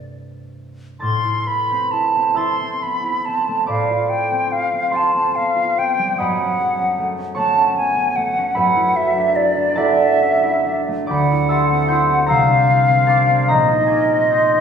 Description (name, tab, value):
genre	classical, impressionist duo for flute and harp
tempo	39-51 BPM (dotted quarters)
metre	6/8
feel	rubato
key	A minor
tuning	A4 = 440 Hz
part	concert harp	accompaniment	0.0-14.6 s	A#1 to Bb6	-19 LUFS	right 1 dB	none
part	silver concert flute	melody	1.0-14.6 s	D5 to C6	-17 LUFS	equal	none
room	wet recital hall reverb, RT60 1.7 s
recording	recorded in a church or concert hall, small room ambience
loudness	-15 LUFS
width	side -7 dB against mid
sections	0.0-1.0 A section; 1.0-14.6 B section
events	none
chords	0.0 Gadd9; 1.0 Amadd9; 3.7 G9sus4/A; 6.2 F#madd9; 8.6 E9sus4/F#; 11.1 D9sus4; 12.3 C9sus4; 13.5 A#9sus4